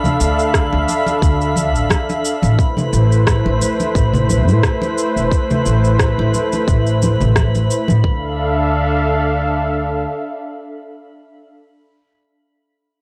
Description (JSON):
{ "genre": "organic downtempo", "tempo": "88 BPM", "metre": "4/4", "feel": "swing 55% on 16ths", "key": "D dorian", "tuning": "A4 = 439 Hz", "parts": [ { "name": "warm analog pad", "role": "sustained chords", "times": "0.0-11.5 s", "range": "A3 to F5", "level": "-21 LUFS", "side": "equal", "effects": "chorus, sidechain pumping" }, { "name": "electronic shaker and rim click", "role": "drums", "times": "0.0-8.0 s", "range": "none", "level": "-25 LUFS", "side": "equal", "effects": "small room ambience" }, { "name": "congas", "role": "percussion", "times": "0.0-8.0 s", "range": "none", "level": "-24 LUFS", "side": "equal", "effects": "none" }, { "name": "drifting glass-harmonics texture", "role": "texture", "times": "0.0-8.1 s", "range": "B5", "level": "-31 LUFS", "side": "equal", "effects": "chorus, built-in reverb" }, { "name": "upright bass", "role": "bass", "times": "0.2-10.0 s", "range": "E1 to A2", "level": "-19 LUFS", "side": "equal", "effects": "transformer saturation, sidechain pumping" }, { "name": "electronic kick drum", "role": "drums", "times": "0.5-8.2 s", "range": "none", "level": "-19 LUFS", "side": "equal", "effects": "small room ambience" } ], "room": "digital ambience", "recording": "dry, gritty hardware recording, transformer saturation, cassette tape", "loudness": "-16 LUFS", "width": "mono", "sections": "0.0-8.0 A section; 8.0-10.8 B section", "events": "none", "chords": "0.0 Dm; 2.6 Am; 8.0 Dm", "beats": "0.54 1.22 1.91 | 2.59 3.27 3.95 4.63 | 5.31 6.00 6.68 7.36 | 8.04 8.72 9.40 10.09" }